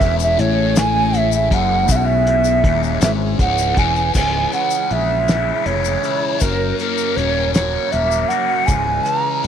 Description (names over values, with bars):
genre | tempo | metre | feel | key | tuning
psychedelic rock | 53 BPM (dotted quarters) | 6/8 | straight | C# dorian | A4 = 440 Hz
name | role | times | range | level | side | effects
mellow hollow jazz flute | melody | 0.0-9.4 s | A#4 to A#5 | -18 LUFS | right 4 dB | tape echo
overdriven combo organ | sustained chords | 0.0-9.5 s | E3 to A#4 | -27 LUFS | right 13 dB | wide subtle chorus
fuzz guitar | riff | 0.0-9.5 s | C#2 to F#4 | -21 LUFS | left 15 dB | distortion, phaser
fingered electric bass | bass | 0.0-9.5 s | C#1 to B1 | -21 LUFS | equal | tube saturation
cloth-damped thuddy drum kit | drums | 0.0-9.5 s | crash cymbal, hi-hat, kick drum, snare drum | -19 LUFS | equal | none
tube shaker | percussion | 0.0-9.1 s | none | -29 LUFS | left 19 dB | none
room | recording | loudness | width
light reverb, small room reverb | 1960s-style stereo with parts hard left and right | -15 LUFS | side -8 dB against mid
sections
0.0-4.1 A section; 4.1-9.5 B section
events
none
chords
0.0 C#m; 6.4 F#; 8.7 C#m